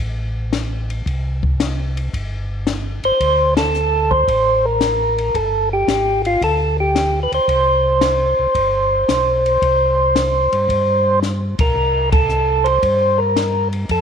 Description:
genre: soul jazz organ trio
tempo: 112 BPM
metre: 4/4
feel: swing 69% on 8ths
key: unclear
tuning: A4 = 440 Hz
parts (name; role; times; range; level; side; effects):
- mellow tonewheel organ; bass; 0.0-14.0 s; G1 to G2; -22 LUFS; equal; slow rotary speaker
- compact cocktail drum kit; drums; 0.5-14.0 s; hi-hat, kick drum, ride cymbal, snare drum; -24 LUFS; left 3 dB; none
- percussive tonewheel organ; melody; 3.0-14.0 s; F4 to C5; -15 LUFS; right 1 dB; slow rotary speaker
room: light reverb, small room ambience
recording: 1960s-style stereo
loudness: -15 LUFS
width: side -7 dB against mid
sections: 0.0-11.8 A section; 11.8-14.0 A section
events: band accent 3.5, 11.5, 12.0; drum fill 11.2-11.8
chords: 0.0 N.C.; 1.1 C5; 3.2 D5; 5.3 G5; 7.5 C5

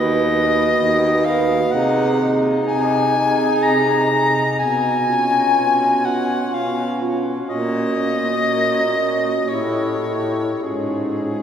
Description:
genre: classical, lyrical piece for single-reed quartet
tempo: 62 BPM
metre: 3/4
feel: rubato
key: Db major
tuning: A4 = 440 Hz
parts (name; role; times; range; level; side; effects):
- clear soprano saxophone; melody; 0.0-11.4 s; Ab4 to Bb5; -19 LUFS; left 2 dB; none
- dark clarinet; second line; 0.0-11.4 s; F4 to Ab4; -24 LUFS; right 5 dB; none
- mellow tenor saxophone; accompaniment; 0.0-11.4 s; B3 to E4; -24 LUFS; equal; none
- mellow baritone saxophone; bass; 0.0-11.4 s; D#2 to C3; -23 LUFS; right 1 dB; none
room: wet cathedral reverb, RT60 4.8 s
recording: recorded in a church or concert hall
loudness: -16 LUFS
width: side -8 dB against mid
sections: 0.0-11.4 A section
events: none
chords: 0.0 B/D#; 1.7 Ab/C; 4.6 Db7/Cb; 7.5 Gb/Bb; 9.5 A7; 10.7 Db/Ab

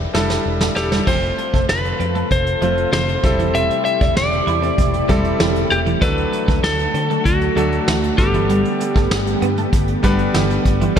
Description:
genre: 1980s-style pop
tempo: 97 BPM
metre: 4/4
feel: straight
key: unclear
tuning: A4 = 444 Hz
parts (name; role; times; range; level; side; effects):
- lightly driven lead guitar; melody; 0.0-10.3 s; F#4 to E5; -21 LUFS; left 1 dB; ping-pong delay, shimmer reverb
- bright concert grand piano; accompaniment; 0.0-11.0 s; F#3 to C5; -23 LUFS; left 1 dB; shimmer reverb
- vintage muted fingered electric bass; bass; 0.0-11.0 s; E1 to D3; -23 LUFS; equal; none
- twelve-string electric guitar; riff; 0.1-11.0 s; E3 to E4; -25 LUFS; right 4 dB; lush chorus, ping-pong delay, shimmer reverb
- vintage brush drum kit; drums; 0.1-11.0 s; crash cymbal, hi-hat, kick drum, snare drum; -20 LUFS; equal; gated reverb
- soft string machine; sustained chords; 1.5-11.0 s; C3 to A4; -24 LUFS; equal; ensemble chorus, shimmer reverb
room: light reverb, small room ambience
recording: none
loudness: -15 LUFS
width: side -8 dB against mid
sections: 0.0-1.1 A section; 1.1-11.0 B section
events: drum fill 0.0-1.1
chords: 0.0 Em7; 1.1 F; 3.2 C6/E; 6.0 D; 8.2 Gadd9

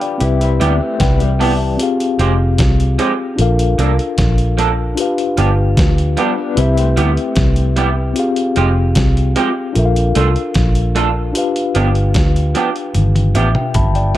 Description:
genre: lovers rock reggae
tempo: 75 BPM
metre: 4/4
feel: straight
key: C major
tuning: A4 = 440 Hz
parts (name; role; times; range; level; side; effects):
- mellow tine electric piano; accompaniment; 0.0-14.2 s; C4 to D6; -19 LUFS; left 4 dB; medium stereo tremolo
- dusty soul sampler-style drum kit; drums; 0.0-14.2 s; hi-hat, kick drum, snare drum, toms; -18 LUFS; equal; none
- electric guitar through a small old amp; arpeggios; 0.2-7.9 s; E3 to G4; -23 LUFS; left 6 dB; tremolo
- vintage muted fingered electric bass; bass; 0.2-14.2 s; F1 to D2; -15 LUFS; equal; none
- electric guitar through a small old amp; stabs; 0.6-13.5 s; F3 to A4; -20 LUFS; right 5 dB; lush chorus
room: light reverb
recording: dark, warm production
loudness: -12 LUFS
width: side -14 dB against mid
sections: 0.0-14.2 A section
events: tine electric piano fill 0.2-1.8, 12.9-14.2; drum fill 12.9-14.2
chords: 0.2 Cmaj7; 1.8 Fmadd9; 3.4 Bbmaj7; 5.0 G7; 6.6 Cmaj7; 8.2 Fmadd9; 9.8 Bbmaj7; 11.4 G7

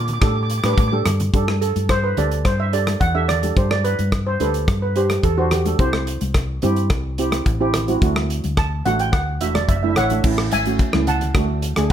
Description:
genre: calypso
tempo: 108 BPM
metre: 4/4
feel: straight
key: G major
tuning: A4 = 439 Hz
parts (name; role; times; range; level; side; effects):
- steel pan; melody; 0.0-11.9 s; F#4 to D6; -23 LUFS; right 2 dB; none
- steel pan; accompaniment; 0.0-11.9 s; A3 to C5; -24 LUFS; right 3 dB; none
- hollow-body short-scale fingered electric bass; bass; 0.0-11.9 s; E1 to Bb2; -22 LUFS; left 1 dB; none
- modern studio drum kit; drums; 0.1-11.9 s; crash cymbal, hi-hat, kick drum, rim click; -21 LUFS; equal; none
- congas; percussion; 0.1-11.5 s; none; -29 LUFS; left 4 dB; none
room: light reverb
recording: none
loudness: -17 LUFS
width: side -10 dB against mid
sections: 0.0-1.3 A section; 1.3-10.2 B section; 10.2-11.9 A section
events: drum fill 0.6-1.3; steel pan solo 1.3-10.2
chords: 0.2 Dsus4/A; 1.3 Gsus2; 5.8 C; 8.0 Dadd9; 10.2 Amaj7; 11.4 D

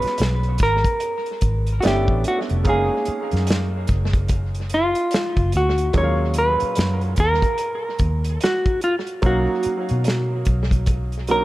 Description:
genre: R&B, neo-soul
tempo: 73 BPM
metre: 4/4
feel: swing 61% on 16ths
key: unclear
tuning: A4 = 440 Hz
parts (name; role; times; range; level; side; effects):
- semi-hollow electric guitar; melody; 0.0-11.4 s; E#4 to C#5; -22 LUFS; equal; tape echo
- clear upright piano; accompaniment; 0.0-11.4 s; A#2 to E#5; -28 LUFS; right 3 dB; tape echo
- vintage muted fingered electric bass; bass; 0.0-11.4 s; E#1 to B2; -22 LUFS; equal; none
- warm soul drum kit; drums; 0.0-11.4 s; hi-hat, kick drum, snare drum; -23 LUFS; equal; tape echo
room: light reverb, small room ambience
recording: echo-heavy mix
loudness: -18 LUFS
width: side -17 dB against mid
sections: 0.0-11.4 A section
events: none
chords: 0.0 G#m11; 1.8 G69; 2.7 F#69; 5.9 D#m9; 9.2 Bmaj7

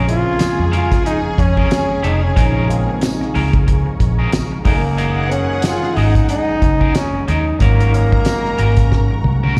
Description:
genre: lush 1970s-style soul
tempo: 92 BPM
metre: 4/4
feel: swing 58% on 16ths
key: Bb minor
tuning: A4 = 441 Hz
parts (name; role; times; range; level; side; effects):
- clear trombone; melody; 0.0-9.6 s; Bb3 to F4; -23 LUFS; equal; slapback echo
- dark studio string section; second line; 0.0-9.6 s; Ab4 to Bb5; -30 LUFS; equal; slapback echo
- overdriven tine electric piano; accompaniment; 0.0-9.6 s; Db3 to Eb4; -26 LUFS; equal; phaser, slapback echo
- mellow tonewheel organ; sustained chords; 0.0-9.6 s; Ab4 to Eb6; -36 LUFS; equal; none
- electric guitar at the edge of break-up; riff; 0.0-9.6 s; Db4 to Bb4; -28 LUFS; equal; tremolo, slapback echo
- vintage muted fingered electric bass; bass; 0.0-9.5 s; F1 to F2; -18 LUFS; equal; none
- cloth-damped thuddy drum kit; drums; 0.1-9.6 s; hi-hat, kick drum, snare drum, toms; -19 LUFS; equal; none
- tambourine; percussion; 0.4-9.6 s; none; -38 LUFS; equal; none
room: little or no reverb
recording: live gig heard through the venue's PA, recital hall reverb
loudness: -16 LUFS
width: mono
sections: 0.0-9.6 A section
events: drum fill 8.9-9.6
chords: 0.0 Bbm7; 4.7 Gb69; 7.6 Ab9sus4

